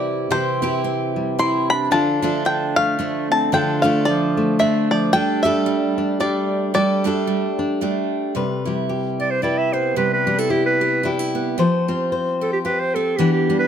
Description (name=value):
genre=acoustic folk duo or small band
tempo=112 BPM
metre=3/4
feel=swing 58% on 8ths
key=C major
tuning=A4 = 438 Hz
part: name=bluegrass banjo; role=melody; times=0.0-7.8 s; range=C5 to C6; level=-21 LUFS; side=left 2 dB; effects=none
part: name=fingerpicked steel-string acoustic guitar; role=accompaniment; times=0.0-13.7 s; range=C3 to C5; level=-22 LUFS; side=left 3 dB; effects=none
part: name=picked steel-string acoustic guitar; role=arpeggios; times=0.0-13.7 s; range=E3 to G4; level=-24 LUFS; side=right 8 dB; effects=slapback echo
part: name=clear clarinet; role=second line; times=1.4-13.7 s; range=F3 to E5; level=-23 LUFS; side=right 2 dB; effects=none
room=light reverb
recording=close, detailed microphones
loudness=-17 LUFS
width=side -8 dB against mid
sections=0.0-8.3 A section; 8.3-13.7 B section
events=clarinet solo 8.3-13.7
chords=0.0 C; 1.9 Dm; 5.1 Gsus2; 8.3 Cmaj7; 11.6 Fsus2